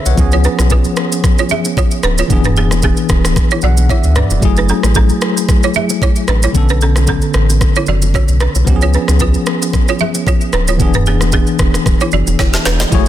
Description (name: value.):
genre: afrobeats.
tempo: 113 BPM.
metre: 4/4.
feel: swing 55% on 16ths.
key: unclear.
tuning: A4 = 439 Hz.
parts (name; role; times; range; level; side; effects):
bell-like tine electric piano; accompaniment; 0.0-13.1 s; D3 to F#5; -17 LUFS; left 2 dB; medium stereo tremolo.
warm sub bass; bass; 0.1-13.1 s; D1 to D2; -14 LUFS; equal; none.
afro-pop drum kit; drums; 0.1-13.1 s; kick drum, rim click, shaker, snare drum, toms; -15 LUFS; equal; soft clipping on snare.
bongos and congas; percussion; 0.1-13.1 s; none; -26 LUFS; left 8 dB; none.
balafon; riff; 0.3-12.7 s; B3 to E5; -19 LUFS; right 6 dB; ping-pong delay.
deep dark ambient pad; sustained chords; 12.9-13.1 s; none; barely audible; none; none.
room: little or no reverb.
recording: dense, heavily limited modern master.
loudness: -10 LUFS.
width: side -12 dB against mid.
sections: 0.0-12.9 A section.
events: tine electric piano fill 3.4-4.4; drum fill 12.4-12.9.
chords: 0.2 C#7; 2.3 E7; 4.4 F#m9; 6.5 Bm9; 8.7 C#7; 10.8 E7.